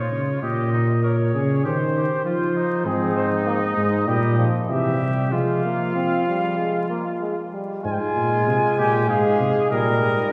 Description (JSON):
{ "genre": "classical, imitative canzona for brass ensemble", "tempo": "97 BPM", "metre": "4/4", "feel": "straight", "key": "F minor", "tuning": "A4 = 439 Hz", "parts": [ { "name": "mellow cornet", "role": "melody", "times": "0.0-10.3 s", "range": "Ab4 to Ab5", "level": "-28 LUFS", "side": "equal", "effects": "none" }, { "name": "warm trumpet", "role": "second line", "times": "0.0-10.3 s", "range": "Eb4 to Bb4", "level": "-30 LUFS", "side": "equal", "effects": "none" }, { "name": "warm tuba", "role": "bass", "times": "0.0-10.3 s", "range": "Ab2 to F3", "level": "-25 LUFS", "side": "equal", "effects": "none" }, { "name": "warm trombone", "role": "accompaniment", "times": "2.9-10.3 s", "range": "E3 to C4", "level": "-27 LUFS", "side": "equal", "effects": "none" } ], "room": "wet church reverb, RT60 3.4 s", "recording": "heard from further back in the room, vinyl crackle", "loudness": "-21 LUFS", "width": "mono", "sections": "0.0-7.8 A section; 7.8-10.3 B section", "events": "none", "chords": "0.4 Eb/Bb; 1.6 Cm/Eb; 2.9 Ab; 4.1 Ebadd9/Bb; 4.7 C; 5.3 Fm; 7.8 Fm/Ab; 9.1 Ab5" }